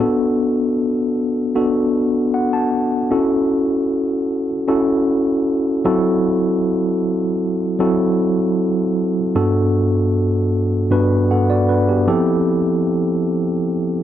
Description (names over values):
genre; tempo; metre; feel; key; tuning
soul; 77 BPM; 4/4; straight; unclear; A4 = 438 Hz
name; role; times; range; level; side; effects
mellow tine electric piano; solo; 0.0-14.0 s; G2 to A5; -16 LUFS; equal; medium stereo tremolo
room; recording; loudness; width
light reverb; none; -16 LUFS; side -11 dB against mid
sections
0.0-3.1 A section; 3.1-14.0 B section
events
tine electric piano fill 2.0-3.1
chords
0.0 Bm7; 3.1 F#m7; 5.8 F#m7b5; 9.4 Gmaj7; 12.1 Fmaj9